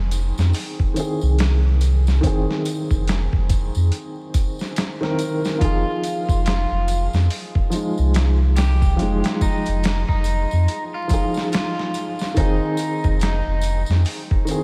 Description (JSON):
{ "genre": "trip hop", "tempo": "71 BPM", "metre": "4/4", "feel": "swing 60% on 16ths", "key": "F minor", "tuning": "A4 = 441 Hz", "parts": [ { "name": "dark upright piano", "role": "accompaniment", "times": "0.0-14.6 s", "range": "Eb3 to Bb4", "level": "-28 LUFS", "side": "equal", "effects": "tremolo, vintage 12-bit sampler grit, tape echo" }, { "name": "warm sub bass", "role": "bass", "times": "0.0-14.0 s", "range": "F1 to F2", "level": "-21 LUFS", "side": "equal", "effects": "tube saturation" }, { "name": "dusty soul sampler-style drum kit", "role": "drums", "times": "0.1-14.6 s", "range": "hi-hat, kick drum, snare drum", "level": "-25 LUFS", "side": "equal", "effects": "overdrive" }, { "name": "tambourine", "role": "percussion", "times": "0.1-14.6 s", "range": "none", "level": "-42 LUFS", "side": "equal", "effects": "none" }, { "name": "electric guitar at the edge of break-up", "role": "melody", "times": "5.6-13.8 s", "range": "Eb4 to G4", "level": "-30 LUFS", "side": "equal", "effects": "tape echo" } ], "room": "moderate lush hall reverb, RT60 2.8 s", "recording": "dreamy mix soaked in reverb, vinyl crackle", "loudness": "-20 LUFS", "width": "mono", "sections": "0.0-14.6 A section", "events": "none", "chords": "0.0 Ab/F; 5.6 Fm7", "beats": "0.54 1.39 | 2.23 3.08 3.92 4.77 | 5.61 6.46 7.30 8.15 | 8.99 9.84 10.68 11.53 | 12.37 13.22 14.06" }